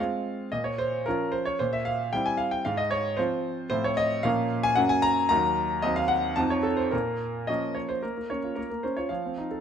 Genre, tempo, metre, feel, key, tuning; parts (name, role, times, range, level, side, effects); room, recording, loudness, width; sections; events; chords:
classical-period piano sonatina; 112 BPM; 2/4; straight; F minor, Bb minor from 3.7 s; A4 = 440 Hz
clear grand piano; solo; 0.0-9.6 s; Eb2 to Bb5; -24 LUFS; equal
moderate recital hall reverb, RT60 1.6 s; close, detailed microphones; -24 LUFS; side -8 dB against mid
0.0-8.0 A section; 8.0-9.6 B section
0.0 Fm; 0.5 Bbm; 1.6 C7/Bb; 2.7 Fm/Ab; 3.7 F7/A; 4.2 Bbm; 4.8 Gb; 5.3 Ebm; 5.8 Cdim/Eb; 6.4 F5; 6.9 Bbm